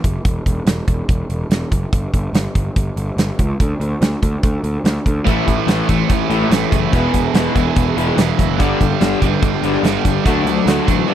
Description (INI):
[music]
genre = classic rock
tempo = 144 BPM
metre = 4/4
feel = straight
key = A mixolydian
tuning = A4 = 439 Hz
[part]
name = fuzz picked electric bass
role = bass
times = 0.0-11.0 s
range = E1 to D2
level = -20 LUFS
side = equal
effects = overdrive
[part]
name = big rock drum kit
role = drums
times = 0.0-11.0 s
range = hi-hat, kick drum, snare drum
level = -18 LUFS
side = right 1 dB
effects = none
[part]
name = cranked stack guitar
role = riff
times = 5.2-11.1 s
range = E2 to D4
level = -20 LUFS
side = right 13 dB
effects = overdrive
[part]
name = fingerpicked twelve-string acoustic guitar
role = accompaniment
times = 5.3-11.1 s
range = E2 to G4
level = -25 LUFS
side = right 3 dB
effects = none
[part]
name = raw garage guitar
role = riff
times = 5.3-11.1 s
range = E2 to A3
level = -20 LUFS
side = left 15 dB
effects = overdrive
[sound]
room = little or no reverb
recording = dry, close 1970s-style studio recording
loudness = -14 LUFS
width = side -10 dB against mid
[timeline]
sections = 0.0-11.1 A section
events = none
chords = 0.2 N.C.; 5.3 A; 6.9 E; 8.6 G; 10.2 D